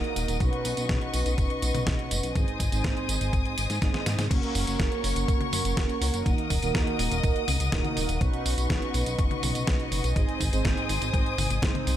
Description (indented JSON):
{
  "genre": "italo disco",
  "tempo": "123 BPM",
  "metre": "4/4",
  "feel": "straight",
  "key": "F# major",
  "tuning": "A4 = 439 Hz",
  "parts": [
    { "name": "warm studio string section", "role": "sustained chords", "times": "0.0-12.0 s", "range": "A#4 to D#6", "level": "-32 LUFS", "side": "left 4 dB", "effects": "none" },
    { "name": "mellow synth brass", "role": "stabs", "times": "0.0-12.0 s", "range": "G#2 to B#4", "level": "-32 LUFS", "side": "right 4 dB", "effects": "chorus, tape echo" },
    { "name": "clean 12-bit digital drum machine", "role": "drums", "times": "0.0-12.0 s", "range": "crash cymbal, hi-hat, snare drum, tambourine, toms", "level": "-32 LUFS", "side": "equal", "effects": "none" },
    { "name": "chorused synth bass", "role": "bass", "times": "0.2-12.0 s", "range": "D#1 to G#2", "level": "-29 LUFS", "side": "equal", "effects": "none" },
    { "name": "electronic kick drum", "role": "drums", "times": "0.4-11.7 s", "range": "none", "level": "-27 LUFS", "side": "equal", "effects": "none" }
  ],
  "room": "light reverb",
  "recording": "none",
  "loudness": "-24 LUFS",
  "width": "side -11 dB against mid",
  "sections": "0.0-4.3 A section; 4.3-12.0 B section",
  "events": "drum fill 3.8-4.3",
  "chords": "0.4 Badd9; 2.4 G#; 4.3 F#; 6.3 D#m; 8.2 Badd9; 10.2 G#"
}